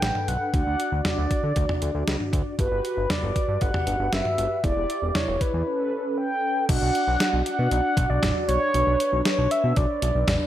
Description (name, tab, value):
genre	synth-pop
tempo	117 BPM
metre	4/4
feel	straight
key	unclear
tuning	A4 = 440 Hz
part	mellow horn-like synth lead	melody	0.0-10.5 s	B4 to G5	-25 LUFS	equal	chorus, analog delay
part	mellow synth brass	accompaniment	0.0-10.5 s	C#4 to D5	-30 LUFS	right 1 dB	chorus
part	fat analog bass	bass	0.0-10.4 s	E1 to D3	-26 LUFS	equal	none
part	detuned 8-bit digital drum machine	drums	0.0-10.4 s	crash cymbal, hi-hat, kick drum, snare drum, toms	-26 LUFS	equal	none
room	moderate plate reverb, RT60 1.4 s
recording	dreamy mix soaked in reverb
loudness	-21 LUFS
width	side -12 dB against mid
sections	0.0-6.7 A section; 6.7-10.5 B section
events	none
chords	0.0 Bm7; 0.5 D; 2.6 Gmaj7; 4.6 Em7; 5.7 Aadd9; 6.7 D/B; 8.7 Bmadd9